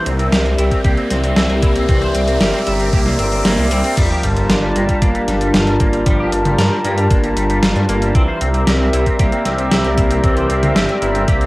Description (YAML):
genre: synthwave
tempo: 115 BPM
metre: 4/4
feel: straight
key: G dorian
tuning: A4 = 441 Hz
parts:
  - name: chorused pulse-width pad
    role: sustained chords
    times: 0.0-11.5 s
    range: G3 to A5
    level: -18 LUFS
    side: left 1 dB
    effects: sidechain pumping
  - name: electric guitar at the edge of break-up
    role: arpeggios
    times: 0.0-11.5 s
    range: E3 to Bb4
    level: -24 LUFS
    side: right 2 dB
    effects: tape echo
  - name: clean electric guitar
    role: riff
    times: 0.0-11.4 s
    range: G3 to C5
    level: -25 LUFS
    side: equal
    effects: ensemble chorus, low-pass filter, tape echo
  - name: riser and sub drop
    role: sound effects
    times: 0.0-6.1 s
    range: none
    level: -27 LUFS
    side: equal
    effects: none
  - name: wide detuned saw bass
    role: bass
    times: 0.1-11.5 s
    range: G1 to G2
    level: -19 LUFS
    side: equal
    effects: chorus, transformer saturation
  - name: gated 80s digital drum machine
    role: drums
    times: 0.1-11.5 s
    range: crash cymbal, hi-hat, snare drum, toms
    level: -20 LUFS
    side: equal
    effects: gated reverb, gated reverb snare, overdrive
  - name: electronic kick drum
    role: drums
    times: 0.7-11.4 s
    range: none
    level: -15 LUFS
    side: equal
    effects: none
room: light reverb, digital ambience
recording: home recording on cassette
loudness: -13 LUFS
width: side -20 dB against mid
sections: 0.0-4.0 A section; 4.0-11.5 B section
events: riser 0.0-4.0; filter sweep on analog synth pad 0.0-4.0; filter sweep on clean electric guitar 0.0-4.0; impact 4.0-6.1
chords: 0.0 C7; 4.0 Gm7; 8.2 C7